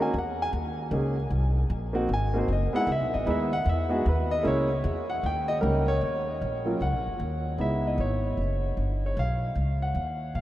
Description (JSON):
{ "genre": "jazz piano trio", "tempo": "153 BPM", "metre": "4/4", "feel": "swing 64% on 8ths", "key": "Eb minor from 6.0 s", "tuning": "A4 = 436 Hz", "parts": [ { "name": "warm concert grand piano", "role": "melody", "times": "0.0-10.4 s", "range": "Gb3 to G#5", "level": "-27 LUFS", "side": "equal", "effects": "none" }, { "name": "upright bass", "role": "bass", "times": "0.0-10.4 s", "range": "F#1 to A#2", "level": "-28 LUFS", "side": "equal", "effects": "none" } ], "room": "wet huge ambient reverb, RT60 7.4 s", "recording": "in a vast, echoing space", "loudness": "-25 LUFS", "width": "side -14 dB against mid", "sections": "0.0-6.0 A section; 6.0-10.4 B section", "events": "grand piano solo 0.0-6.0", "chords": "0.0 D#m7; 1.3 G#7; 2.9 C#m7 (rootless); 4.4 A#m7b5; 5.2 D#7; 6.0 Ebm7; 7.6 Dbm7; 8.4 Gb5; 9.2 B", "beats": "0.14 0.53 0.92 | 1.31 1.71 2.10 2.49 | 2.88 3.27 3.67 4.06 | 4.45 4.84 5.23 5.63 | 6.02 6.41 6.80 7.20 | 7.59 7.98 8.38 8.77 | 9.16 9.55 9.95 10.34" }